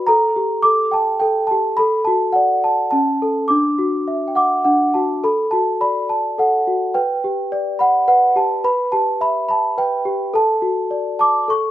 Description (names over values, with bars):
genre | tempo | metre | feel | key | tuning
children's music, lullaby | 106 BPM | 3/4 | rubato | D major | A4 = 440 Hz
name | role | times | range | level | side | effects
celesta | solo | 0.0-11.7 s | C#4 to D6 | -15 LUFS | equal | none
room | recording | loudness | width
little or no reverb | recorded outdoors, with no room sound | -15 LUFS | side -13 dB against mid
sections
0.0-5.2 A section; 5.2-11.7 A section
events
none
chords
0.1 Gmadd9; 1.8 D; 2.9 A; 3.5 Dadd9; 5.2 D; 7.0 G; 8.6 Em; 10.3 D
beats
| 0.09 0.66 1.23 | 1.79 2.35 2.92 | 3.49 4.07 4.66 | 5.24 5.82 6.39 | 6.96 7.52 8.08 | 8.64 9.21 9.77 | 10.34 10.91 11.49